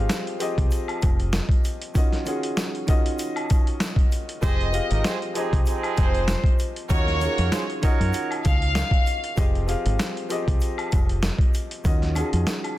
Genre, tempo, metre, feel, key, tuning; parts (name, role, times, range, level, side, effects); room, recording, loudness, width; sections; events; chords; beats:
hip hop, boom-bap hip-hop; 97 BPM; 4/4; swing 55% on 16ths; F phrygian; A4 = 440 Hz
clear upright piano; accompaniment; 0.0-12.8 s; Eb3 to F5; -29 LUFS; left 1 dB; cassette tape, high-pass filter, low-pass filter
deep dub fingered electric bass; bass; 0.0-12.4 s; F1 to Gb2; -24 LUFS; equal
boom bap sampler-style drum kit; drums; 0.1-12.8 s; hi-hat, kick drum, snare drum; -22 LUFS; equal; vintage 12-bit sampler grit
tube shaker and woodblock; percussion; 0.1-12.8 s; -37 LUFS; left 2 dB
warm studio violin section; melody; 4.4-9.3 s; C5 to F5; -28 LUFS; left 1 dB; high-pass filter, low-pass filter, digital delay
mellow trumpet section; stabs; 4.4-8.4 s; Bb3 to Db5; -30 LUFS; right 6 dB; high-pass filter, low-pass filter, digital delay
studio reverb; dense, heavily limited modern master; -20 LUFS; side -15 dB against mid
0.0-12.8 A section
0.0 Fm9; 2.0 Ebm9; 4.4 Fm9; 6.9 Ebm9; 9.4 Fm9; 11.8 Ebm9
0.10 0.71 1.33 | 1.95 2.57 3.19 3.81 | 4.42 5.04 5.66 6.28 | 6.90 7.52 8.14 8.76 | 9.37 9.99 10.61 11.23 | 11.85 12.47